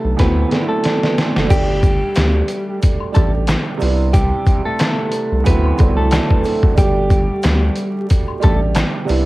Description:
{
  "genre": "hip hop, boom-bap hip-hop",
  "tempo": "91 BPM",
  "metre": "4/4",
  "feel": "swing 55% on 16ths",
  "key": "G major",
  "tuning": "A4 = 441 Hz",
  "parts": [
    { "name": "clean electric guitar", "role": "melody", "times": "0.0-8.6 s", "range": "G3 to B4", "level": "-21 LUFS", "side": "equal", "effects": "high-pass filter, low-pass filter, cassette tape, tape echo" },
    { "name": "dark upright piano", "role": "accompaniment", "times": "0.0-9.3 s", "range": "D2 to D5", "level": "-22 LUFS", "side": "right 5 dB", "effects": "high-pass filter, low-pass filter, cassette tape" },
    { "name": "saturated sub bass", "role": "bass", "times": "0.0-9.3 s", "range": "F#1 to D2", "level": "-17 LUFS", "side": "equal", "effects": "none" },
    { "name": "trip hop sampler-style drum kit", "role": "drums", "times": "0.2-9.3 s", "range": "crash cymbal, handclaps, hi-hat, kick drum, snare drum", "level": "-16 LUFS", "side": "equal", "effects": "cassette tape" },
    { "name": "tube shaker and woodblock", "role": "percussion", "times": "1.5-9.2 s", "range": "none", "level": "-36 LUFS", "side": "left 7 dB", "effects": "none" }
  ],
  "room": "digital ambience",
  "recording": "home recording on cassette, vinyl crackle",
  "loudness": "-13 LUFS",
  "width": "side -19 dB against mid",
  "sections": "0.0-1.5 A section; 1.5-9.3 B section",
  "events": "drum fill 0.2-1.5",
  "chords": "0.2 D7; 1.5 Gsus2; 3.8 Cmaj7; 5.5 D7; 6.8 Gsus2",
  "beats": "0.18 0.84 | 1.50 2.16 2.82 3.48 | 4.14 4.80 5.46 6.12 | 6.78 7.44 8.10 8.76"
}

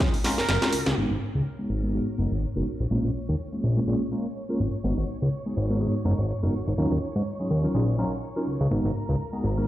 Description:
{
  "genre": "filtered disco house",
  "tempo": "124 BPM",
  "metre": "4/4",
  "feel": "swing 56% on 16ths",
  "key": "G# dorian",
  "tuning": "A4 = 439 Hz",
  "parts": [
    { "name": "tine electric piano", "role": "accompaniment", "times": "0.0-9.7 s", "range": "F#3 to A#4", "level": "-28 LUFS", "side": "equal", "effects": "medium tremolo, phaser, sidechain pumping, low-pass filter" },
    { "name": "fat analog bass", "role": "bass", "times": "0.0-9.7 s", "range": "F#1 to G#2", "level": "-25 LUFS", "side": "equal", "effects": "sidechain pumping, low-pass filter" },
    { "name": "house drum kit", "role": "drums", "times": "0.0-1.1 s", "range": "crash cymbal, hi-hat, snare drum", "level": "-27 LUFS", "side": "equal", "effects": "overdrive, low-pass filter on snare, sidechain pumping on hats, low-pass filter on hats, sidechain pumping on cymbals, low-pass filter on cymbals, low-pass filter on room" },
    { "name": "tambourine", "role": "percussion", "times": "0.0-0.9 s", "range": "none", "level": "-45 LUFS", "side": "right 4 dB", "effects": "none" },
    { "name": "analog synth brass", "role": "melody", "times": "0.4-1.0 s", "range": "A#4", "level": "-32 LUFS", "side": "right 3 dB", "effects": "chorus, sidechain pumping, low-pass filter, tape echo" },
    { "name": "clear symphonic violin section", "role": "sustained chords", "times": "1.0-9.7 s", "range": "A#4 to C#6", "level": "-40 LUFS", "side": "right 1 dB", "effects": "sidechain pumping, low-pass filter" }
  ],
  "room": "light reverb",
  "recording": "played on a big sound system in a bare room, large studio reverb",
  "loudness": "-24 LUFS",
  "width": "side -14 dB against mid",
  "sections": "1.0-9.7 A section",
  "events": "drum fill 0.2-1.0; band accent 0.8; filter sweep 1.0-9.7",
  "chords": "0.0 F#maj7; 1.0 G#m7; 2.7 A#m7; 4.6 G#m7; 6.8 D#m7; 8.7 G#m7",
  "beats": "0.00 0.49 | 0.97 1.45 1.94 2.42 | 2.91 3.39 3.87 4.36 | 4.84 5.33 5.81 6.29 | 6.78 7.26 7.74 8.23 | 8.71 9.20"
}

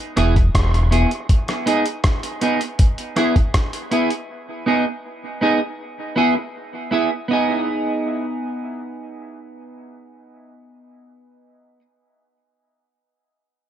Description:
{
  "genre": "dub reggae",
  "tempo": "80 BPM",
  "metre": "4/4",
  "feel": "straight",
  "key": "G# minor",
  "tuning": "A4 = 440 Hz",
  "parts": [
    { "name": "clean electric guitar", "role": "accompaniment", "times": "0.2-11.8 s", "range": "B3 to G#4", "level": "-20 LUFS", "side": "right 2 dB", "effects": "wide subtle chorus, dub echo" },
    { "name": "deep dub fingered electric bass", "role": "bass", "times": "0.2-1.0 s", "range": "E1", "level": "-16 LUFS", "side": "equal", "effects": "none" },
    { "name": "dusty soul sampler-style drum kit", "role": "drums", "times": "0.2-4.3 s", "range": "hi-hat, kick drum, rim click", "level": "-19 LUFS", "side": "equal", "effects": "none" }
  ],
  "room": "light reverb",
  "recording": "none",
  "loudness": "-17 LUFS",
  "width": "side -10 dB against mid",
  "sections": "0.0-7.3 A section; 7.3-10.3 B section",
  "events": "none",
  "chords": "0.0 E; 1.3 G#m; 2.8 E; 4.3 G#m; 5.8 E; 7.3 G#m",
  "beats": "0.55 | 1.29 2.04 2.79 3.54 | 4.29 5.04 5.79 6.54 | 7.29 8.04 8.79 9.54"
}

